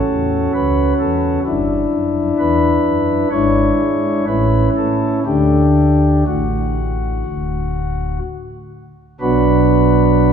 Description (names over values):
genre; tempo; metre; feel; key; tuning
classical, chorale-style piece for pipe organ; 60-66 BPM; 4/4; rubato; D major; A4 = 440 Hz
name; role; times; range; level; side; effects
pipe organ, flutes; solo; 0.0-10.3 s; D1 to C#5; -14 LUFS; equal; none
room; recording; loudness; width
wet church reverb, RT60 2.8 s; none; -14 LUFS; side -7 dB against mid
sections
0.0-9.2 A section; 9.2-10.3 B section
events
none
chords
0.0 F#m; 1.5 Em7/G; 3.3 E7/G#; 4.3 A; 5.3 D; 9.2 Bm